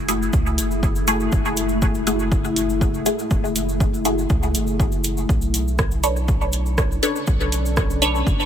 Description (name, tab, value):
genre	dub techno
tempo	121 BPM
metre	4/4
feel	straight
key	F# minor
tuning	A4 = 440 Hz
part	deep dark ambient pad	sustained chords	0.0-8.5 s	A3 to A4	-26 LUFS	left 2 dB	chorus, built-in reverb, sidechain pumping
part	soft dub sub bass	bass	0.0-8.5 s	F#1 to C#2	-25 LUFS	equal	sidechain pumping
part	filtered dub chord stab	stabs	0.1-8.2 s	A3 to C#5	-24 LUFS	left 1 dB	phaser, sidechain pumping, dub echo
part	punchy analog drum machine	drums	0.1-8.1 s	hi-hat, rim click	-26 LUFS	right 2 dB	none
part	cabasa	percussion	0.1-8.5 s	none	-31 LUFS	left 1 dB	none
part	electronic kick drum	drums	0.3-8.4 s	none	-21 LUFS	equal	none
room	digital ambience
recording	none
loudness	-18 LUFS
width	side -9 dB against mid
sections	0.0-8.5 A section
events	none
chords	0.0 F#m9; 5.3 Bm9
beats	0.33 0.83 | 1.32 1.82 2.32 2.81 | 3.31 3.80 4.30 4.79 | 5.29 5.79 6.28 6.78 | 7.28 7.77 8.27